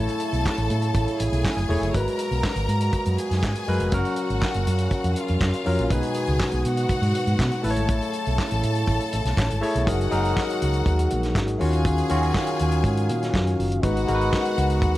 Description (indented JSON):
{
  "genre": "disco",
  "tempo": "121 BPM",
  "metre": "4/4",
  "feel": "straight",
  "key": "unclear",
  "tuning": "A4 = 440 Hz",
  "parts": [
    { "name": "clear studio string section", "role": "second line", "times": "0.0-15.0 s", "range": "E#4 to A#5", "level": "-30 LUFS", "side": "left 2 dB", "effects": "none" },
    { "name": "barky tine electric piano", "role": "accompaniment", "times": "0.0-15.0 s", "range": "B2 to E5", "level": "-26 LUFS", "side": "left 1 dB", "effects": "overdrive, tube saturation, phaser" },
    { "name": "warm French horn section", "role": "sustained chords", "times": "0.0-15.0 s", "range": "A#2 to E#5", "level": "-32 LUFS", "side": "right 2 dB", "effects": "none" },
    { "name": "hollow-body short-scale fingered electric bass", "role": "bass", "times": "0.0-15.0 s", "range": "E1 to B2", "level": "-24 LUFS", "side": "equal", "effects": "none" },
    { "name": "warm soul drum kit", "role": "drums", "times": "0.1-15.0 s", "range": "handclaps, hi-hat, kick drum, snare drum", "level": "-27 LUFS", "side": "equal", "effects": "none" }
  ],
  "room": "little or no reverb",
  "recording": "none",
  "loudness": "-20 LUFS",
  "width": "side -15 dB against mid",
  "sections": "0.0-9.9 A section; 9.9-15.0 B section",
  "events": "tine electric piano fill 9.1-9.9",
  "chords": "0.0 Amaj7; 1.9 G#m9; 3.9 F#maj7; 5.9 B6; 7.6 Amaj7; 9.9 F#69; 11.6 D#m9; 13.8 G#m7"
}